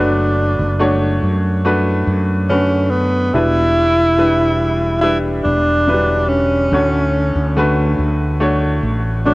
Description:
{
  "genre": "pop ballad",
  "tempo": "71 BPM",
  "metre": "4/4",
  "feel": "straight",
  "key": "unclear",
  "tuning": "A4 = 444 Hz",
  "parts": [
    { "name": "breathy alto saxophone", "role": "melody", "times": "0.0-9.3 s", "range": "B3 to E4", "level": "-16 LUFS", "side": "equal", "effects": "tape echo" },
    { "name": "clear upright piano", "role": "accompaniment", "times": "0.0-9.3 s", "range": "A2 to C#5", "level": "-18 LUFS", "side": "left 1 dB", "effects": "cassette tape" },
    { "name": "mellow fretless electric bass", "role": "bass", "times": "0.0-9.3 s", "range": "E1 to F#2", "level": "-18 LUFS", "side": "equal", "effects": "none" }
  ],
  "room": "small room ambience",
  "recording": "home recording on cassette",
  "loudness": "-13 LUFS",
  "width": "side -21 dB against mid",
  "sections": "0.0-9.3 A section",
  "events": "none",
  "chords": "0.0 Bm7/F#; 3.3 Em7; 6.7 Dmaj7"
}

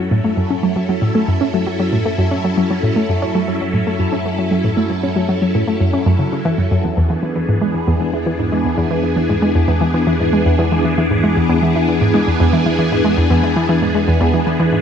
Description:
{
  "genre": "ambient, sequencer-driven space music",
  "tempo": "116 BPM",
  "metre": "4/4",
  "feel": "straight",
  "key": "F# minor",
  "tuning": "A4 = 440 Hz",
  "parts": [
    { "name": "phased string machine", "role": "sustained chords", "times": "0.0-14.8 s", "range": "E3 to A4", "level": "-18 LUFS", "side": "equal", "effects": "ensemble chorus, phaser, shimmer reverb" },
    { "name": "analog pluck", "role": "riff", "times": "0.0-14.8 s", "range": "E2 to C#4", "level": "-16 LUFS", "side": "equal", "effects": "chorus, ping-pong delay" },
    { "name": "analog drone", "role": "bass", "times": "0.0-14.8 s", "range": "E2 to F#2", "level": "-25 LUFS", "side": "equal", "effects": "chorus" }
  ],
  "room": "moderate plate reverb, RT60 2.9 s",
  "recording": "echo-heavy mix",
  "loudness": "-14 LUFS",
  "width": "side -8 dB against mid",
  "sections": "0.0-14.8 A section",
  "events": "fade-in on string machine 0.0-14.8; fade-in on synth drone 0.0-14.8; filter sweep on synth arpeggio sound 0.0-14.8",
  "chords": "0.0 F#m7; 6.8 E7"
}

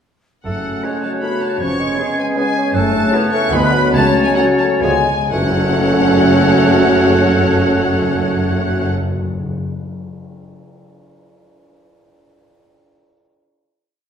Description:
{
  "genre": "classical, dramatic, fast romantic movement for symphony orchestra",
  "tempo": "120-159 BPM",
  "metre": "3/4",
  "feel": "rubato",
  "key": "F# minor",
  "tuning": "A4 = 440 Hz",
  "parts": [
    { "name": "rich chamber violin section", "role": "melody", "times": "0.4-8.9 s", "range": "F#5 to C#6", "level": "-23 LUFS", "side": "left 4 dB", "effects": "none" },
    { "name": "clear oboe", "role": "second line", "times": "0.4-8.9 s", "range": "G#4 to C#5", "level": "-24 LUFS", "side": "equal", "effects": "none" },
    { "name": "mellow hollow concert flute", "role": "second line", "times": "0.4-8.9 s", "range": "F#6 to A6", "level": "-24 LUFS", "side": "equal", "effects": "none" },
    { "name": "bright trombone section", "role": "sustained chords", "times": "0.4-8.9 s", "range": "C#3 to B3", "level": "-24 LUFS", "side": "right 2 dB", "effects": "none" },
    { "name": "warm clarinet", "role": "second line", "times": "0.5-8.9 s", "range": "B3 to E4", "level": "-22 LUFS", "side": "equal", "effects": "none" },
    { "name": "warm bassoon", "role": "accompaniment", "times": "0.5-8.9 s", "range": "E#3 to C#4", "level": "-22 LUFS", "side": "left 1 dB", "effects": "none" },
    { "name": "dark French horn section", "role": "sustained chords", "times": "0.5-8.9 s", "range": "F#3 to C#4", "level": "-23 LUFS", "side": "left 2 dB", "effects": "none" },
    { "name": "clear studio cello section", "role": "bass", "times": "0.5-8.9 s", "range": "C#2 to F#2", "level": "-24 LUFS", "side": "right 2 dB", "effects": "none" },
    { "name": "rich symphonic double bass section", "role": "bass", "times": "0.5-8.9 s", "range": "E#1 to D2", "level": "-23 LUFS", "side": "right 2 dB", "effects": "none" },
    { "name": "timpani", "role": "percussion", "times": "0.5-1.0, 3.9-9.6 s", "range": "F#2 to C#3", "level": "-24 LUFS", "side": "left 1 dB", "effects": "none" },
    { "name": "warm symphonic violin section", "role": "second line", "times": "0.8-8.9 s", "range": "F#4 to F#5", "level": "-26 LUFS", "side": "left 3 dB", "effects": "none" },
    { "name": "warm symphonic viola section", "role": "accompaniment", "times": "0.9-8.9 s", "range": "B3 to G#4", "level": "-21 LUFS", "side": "right 2 dB", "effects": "none" },
    { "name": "cymbal swell and tam-tam", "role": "percussion", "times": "2.8-7.2 s", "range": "none", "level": "-28 LUFS", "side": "left 1 dB", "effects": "none" }
  ],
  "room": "wet recital hall reverb, RT60 1.6 s",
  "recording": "recorded in a church or concert hall",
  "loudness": "-13 LUFS",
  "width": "side -8 dB against mid",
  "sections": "0.5-5.3 A section; 5.3-8.1 final chord",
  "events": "slowing down 2.2-5.3; timpani fill 4.8-5.3; band accent 5.3-5.8",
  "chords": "0.5 F#m; 1.6 C#7/E#; 2.8 F#m; 3.5 Bm/D; 3.9 F#m/C#; 4.8 C#7b9; 5.3 F#m"
}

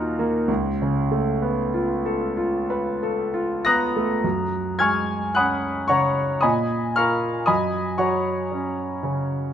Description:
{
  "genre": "classical, impressionist solo piano",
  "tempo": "46-59 BPM",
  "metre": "3/4",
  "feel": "rubato",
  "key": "F# major",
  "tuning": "A4 = 440 Hz",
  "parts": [
    { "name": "clear concert grand piano", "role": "solo", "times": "0.0-9.5 s", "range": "C#2 to A#6", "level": "-20 LUFS", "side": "equal", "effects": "none" }
  ],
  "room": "moderate recital hall reverb, RT60 1.4 s",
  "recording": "close, detailed microphones",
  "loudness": "-20 LUFS",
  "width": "side -9 dB against mid",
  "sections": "0.0-4.2 A section; 4.2-9.5 B section",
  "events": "none",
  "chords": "0.5 C#aug7; 4.2 F#add9; 6.4 A#m7; 7.5 F#"
}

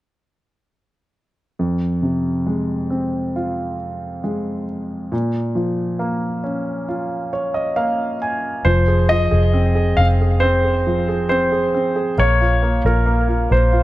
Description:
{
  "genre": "pop",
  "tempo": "68 BPM",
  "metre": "4/4",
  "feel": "straight",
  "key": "F minor",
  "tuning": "A4 = 440 Hz",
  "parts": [
    { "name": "warm grand piano", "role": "accompaniment", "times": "1.6-13.8 s", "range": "F2 to Ab5", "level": "-20 LUFS", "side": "right 1 dB", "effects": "none" },
    { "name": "warm concert grand piano", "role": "melody", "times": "8.6-13.8 s", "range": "Bb4 to F5", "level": "-19 LUFS", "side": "equal", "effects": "dub echo" },
    { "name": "vintage muted fingered electric bass", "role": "bass", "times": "8.7-13.8 s", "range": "F1 to Bb1", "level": "-17 LUFS", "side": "equal", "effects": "none" }
  ],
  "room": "light reverb",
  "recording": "echo-heavy mix",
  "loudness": "-17 LUFS",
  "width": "side -16 dB against mid",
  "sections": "1.6-8.7 A section; 8.7-13.8 B section",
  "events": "grand piano fill 6.9-8.7",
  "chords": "1.6 Fm; 5.1 Bbm; 8.7 Fm; 12.2 Bb5"
}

